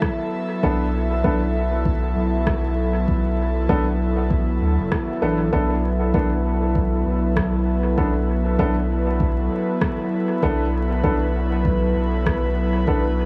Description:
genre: ambient dub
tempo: 98 BPM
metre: 4/4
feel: swing 60% on 16ths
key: B minor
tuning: A4 = 441 Hz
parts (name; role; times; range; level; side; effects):
- airy breathy pad; sustained chords; 0.0-13.3 s; F#3 to E5; -26 LUFS; equal; chorus
- electronic kick drum; drums; 0.0-13.0 s; none; -27 LUFS; equal; none
- electronic rim click; drums; 0.0-12.4 s; none; -34 LUFS; equal; dub echo
- clear upright piano; stabs; 0.6-13.0 s; B3 to A4; -29 LUFS; equal; dub echo
- warm sub bass; bass; 0.6-13.3 s; F#1 to D2; -25 LUFS; equal; tube saturation
room: light reverb, digital ambience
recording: vinyl crackle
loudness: -21 LUFS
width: mono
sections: 0.0-13.3 A section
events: none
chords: 0.0 Bm7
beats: 0.02 | 0.63 1.24 1.86 2.47 | 3.08 3.69 4.31 4.92 | 5.53 6.14 6.75 7.37 | 7.98 8.59 9.20 9.82 | 10.43 11.04 11.65 12.27 | 12.88

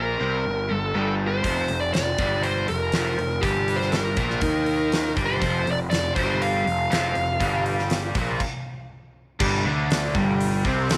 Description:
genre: blues rock power trio and southern rock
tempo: 121 BPM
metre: 4/4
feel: straight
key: unclear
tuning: A4 = 439 Hz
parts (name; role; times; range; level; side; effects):
- dark smooth lead guitar; melody; 0.0-8.9 s; G4 to F5; -28 LUFS; equal; overdrive
- overdriven electric guitar; riff; 0.0-11.0 s; F2 to Eb4; -28 LUFS; equal; none
- fuzz picked electric bass; bass; 0.0-11.0 s; F1 to Eb2; -30 LUFS; equal; overdrive
- huge arena drum kit; drums; 1.4-11.0 s; crash cymbal, hi-hat, kick drum, snare drum; -30 LUFS; equal; none
room: light reverb, studio ambience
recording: none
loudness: -23 LUFS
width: mono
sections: 0.0-9.4 A section; 9.4-11.0 B section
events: stop 8.4-9.4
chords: 0.0 Gm; 1.4 F5; 9.4 G5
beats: 0.44 0.94 | 1.44 1.93 2.43 2.93 | 3.42 3.92 4.42 4.92 | 5.41 5.91 6.41 6.91 | 7.41 7.90 8.40 8.90 | 9.40 9.90 10.40 10.90

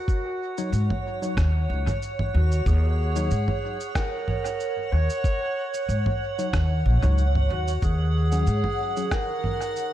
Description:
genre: ambient dub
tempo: 93 BPM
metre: 4/4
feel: swing 54% on 16ths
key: Eb minor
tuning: A4 = 440 Hz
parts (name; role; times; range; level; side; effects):
- dark clarinet; melody; 0.0-9.9 s; Gb4 to Db5; -32 LUFS; right 2 dB; dub echo
- granular cloud pad; sustained chords; 0.1-9.9 s; Eb3 to Gb5; -32 LUFS; right 2 dB; built-in reverb, lush chorus
- drifting glass-harmonics texture; texture; 0.0-9.9 s; Gb5; -36 LUFS; right 1 dB; chorus, built-in reverb
- electronic kick drum; drums; 0.1-9.3 s; none; -26 LUFS; equal; studio reverb
- electronic shaker, congas and rim click; drums; 0.1-9.9 s; none; -31 LUFS; right 1 dB; studio reverb, dub echo
- tine electric piano; stabs; 0.6-9.1 s; Gb3 to Db5; -35 LUFS; left 4 dB; overdrive, fast stereo tremolo, dub echo
- upright bass; bass; 0.7-8.6 s; Bb1 to Ab2; -21 LUFS; equal; none
room: light reverb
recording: none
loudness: -22 LUFS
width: side -12 dB against mid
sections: 0.0-9.9 A section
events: none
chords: 0.0 Ebm7; 7.8 Gbsus2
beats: | 0.08 0.73 1.37 2.02 | 2.66 3.31 3.95 4.60 | 5.24 5.89 6.53 7.18 | 7.83 8.47 9.12 9.76

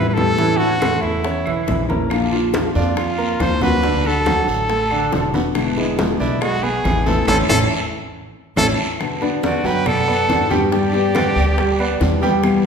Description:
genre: latin, Cuban son and guajira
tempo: 139 BPM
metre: 4/4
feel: straight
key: unclear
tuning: A4 = 439 Hz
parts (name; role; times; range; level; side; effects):
- bright trumpet; melody; 0.0-12.0 s; E4 to C5; -21 LUFS; equal; none
- nylon-string guitar; accompaniment; 0.0-12.6 s; B2 to G4; -22 LUFS; left 4 dB; none
- warm concert grand piano; arpeggios; 0.0-12.6 s; D3 to G5; -22 LUFS; right 3 dB; none
- upright bass; bass; 0.0-12.7 s; E1 to A2; -24 LUFS; equal; none
- bongos; percussion; 0.2-12.7 s; none; -28 LUFS; left 4 dB; none
- congas; percussion; 0.2-12.7 s; none; -26 LUFS; right 1 dB; none
- claves; percussion; 0.8-12.7 s; none; -32 LUFS; right 3 dB; none
- guiro; percussion; 2.1-12.7 s; none; -32 LUFS; right 2 dB; none
- breathy bright jazz flute; second line; 9.4-12.0 s; D5 to G5; -26 LUFS; right 3 dB; none
room: wet recital hall reverb, RT60 1.5 s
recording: recorded in a church or concert hall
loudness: -15 LUFS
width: side -6 dB against mid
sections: 0.0-9.0 A section; 9.0-12.7 B section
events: band accent 7.3-9.0; drum fill 8.6-9.0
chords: 0.4 A; 2.1 Bb; 3.8 D; 5.6 E7; 7.3 A; 9.0 Bm; 10.7 G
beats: | 0.39 0.82 1.25 1.68 | 2.11 2.54 2.97 3.40 | 3.84 4.27 4.70 5.13 | 5.56 5.99 6.42 6.85 | 7.28 7.71 8.14 8.57 | 9.00 9.43 9.86 10.29 | 10.72 11.15 11.58 12.01 | 12.44

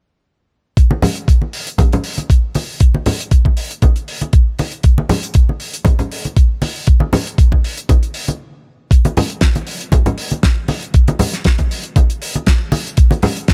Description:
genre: nu-disco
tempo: 118 BPM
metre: 4/4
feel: swing 54% on 16ths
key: none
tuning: none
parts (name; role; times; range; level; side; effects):
- damped 70s drum kit; drums; 0.8-13.5 s; hi-hat, snare drum; -25 LUFS; equal; none
- electronic kick drum; drums; 0.8-13.5 s; none; -13 LUFS; equal; none
- congas; percussion; 0.9-13.3 s; none; -20 LUFS; equal; none
room: small room ambience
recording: none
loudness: -15 LUFS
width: mono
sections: 0.8-8.9 A section; 8.9-13.5 B section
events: stop 8.4-8.9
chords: none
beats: | 0.78 1.28 1.79 2.30 | 2.81 3.32 3.83 4.33 | 4.84 5.35 5.86 6.37 | 6.88 7.38 7.89 8.40 | 8.91 9.42 9.93 10.44 | 10.94 11.45 11.96 12.47 | 12.98 13.49

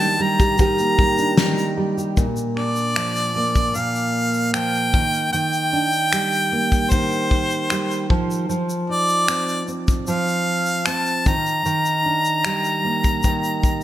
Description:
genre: acoustic pop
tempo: 76 BPM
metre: 4/4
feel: straight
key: Bb major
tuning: A4 = 440 Hz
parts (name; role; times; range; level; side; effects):
- clear harmonica; melody; 0.0-13.8 s; C5 to Bb5; -21 LUFS; equal; none
- nylon-string guitar; accompaniment; 0.0-13.8 s; Bb2 to G4; -22 LUFS; right 2 dB; none
- loose indie drum kit; drums; 0.0-13.8 s; finger snaps, kick drum, shaker, snare drum; -21 LUFS; left 1 dB; gated reverb
room: moderate plate reverb, RT60 2.9 s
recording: bright 1980s-style digital production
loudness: -18 LUFS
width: side -13 dB against mid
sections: 0.0-2.2 A section; 2.2-13.8 B section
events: none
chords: 0.0 Ebmaj7; 2.2 Bb; 4.9 Ebmaj7; 8.1 F5; 11.3 Ebmaj7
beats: 0.59 1.38 | 2.17 2.96 3.75 4.54 | 5.33 6.12 6.92 7.71 | 8.50 9.29 10.08 10.87 | 11.66 12.45 13.24

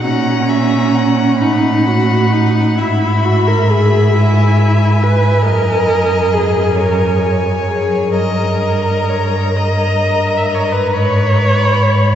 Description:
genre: classical, slow romantic movement for string quartet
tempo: 44 BPM (dotted quarters)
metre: 6/8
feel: rubato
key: unclear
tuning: A4 = 440 Hz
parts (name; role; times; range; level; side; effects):
- rich violin; second line; 0.0-12.2 s; A#4 to F#5; -22 LUFS; left 2 dB; none
- dark viola; accompaniment; 0.0-12.2 s; C#4 to E5; -16 LUFS; right 1 dB; none
- clear violin; melody; 0.1-12.2 s; G#5 to B5; -22 LUFS; left 4 dB; none
- clear cello; bass; 0.1-12.2 s; F#2 to A#2; -14 LUFS; right 1 dB; none
room: wet cathedral reverb, RT60 6.2 s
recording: heard from further back in the room, nothing above 7.9 kHz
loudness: -11 LUFS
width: side -10 dB against mid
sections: 0.0-12.2 A section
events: none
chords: 0.0 F#/A#; 1.4 B5/A; 2.8 E/G#; 5.4 F#; 8.1 D#/G; 10.9 G#m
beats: | 0.05 1.41 | 2.79 4.13 | 5.44 6.77 | 8.11 9.56 | 10.93

